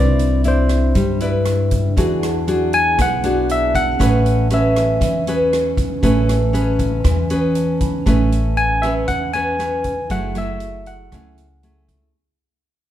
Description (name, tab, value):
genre	bossa nova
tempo	118 BPM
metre	4/4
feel	straight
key	A major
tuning	A4 = 440 Hz
part	barky tine electric piano	melody	0.0-5.2, 8.6-11.8 s	C5 to G#5	-20 LUFS	equal	none
part	nylon-string guitar	accompaniment	0.0-12.1 s	C#3 to D5	-20 LUFS	left 2 dB	none
part	vibraphone with soft mallets	accompaniment	0.0-12.2 s	C#4 to B5	-27 LUFS	right 3 dB	none
part	upright bass	bass	0.0-12.1 s	F#1 to G2	-20 LUFS	equal	none
part	swinging big-band drum kit	drums	0.2-12.0 s	hi-hat, kick drum, rim click	-24 LUFS	equal	none
room	moderate recital hall reverb, RT60 1.8 s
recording	recorded in a church or concert hall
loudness	-15 LUFS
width	side -12 dB against mid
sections	0.0-8.1 A section; 8.1-12.1 B section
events	tine electric piano solo 0.0-8.1; vibraphone fill 7.0-8.1; fade-out 8.1-12.1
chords	0.0 Cmaj9; 2.0 E9; 4.0 Amaj9; 10.1 F#m9